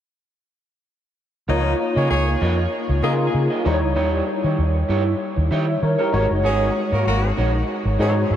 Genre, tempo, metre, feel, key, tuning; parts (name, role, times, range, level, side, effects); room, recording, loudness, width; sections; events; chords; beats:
pop; 97 BPM; 4/4; swing 54% on 16ths; Db major; A4 = 440 Hz
warm horn section; second line; 1.5-8.1 s; Eb3 to Eb5; -27 LUFS; equal; tape echo
barky tine electric piano; accompaniment; 1.5-8.4 s; G3 to Fb5; -22 LUFS; left 2 dB; overdrive, ensemble chorus
electric guitar at the edge of break-up; riff; 1.5-8.3 s; Eb4 to Eb5; -26 LUFS; right 6 dB; wide subtle chorus
vintage muted fingered electric bass; bass; 1.5-8.4 s; Gb1 to Eb3; -21 LUFS; equal
moderate huge ambient reverb, RT60 9.5 s; dreamy mix soaked in reverb; -18 LUFS; side -10 dB against mid
1.5-8.4 A section
1.5 Db69; 3.7 Eb7b9; 6.1 Ab7sus4
| 1.49 2.10 2.73 3.34 | 3.96 4.58 5.20 5.82 | 6.44 7.07 7.68 8.31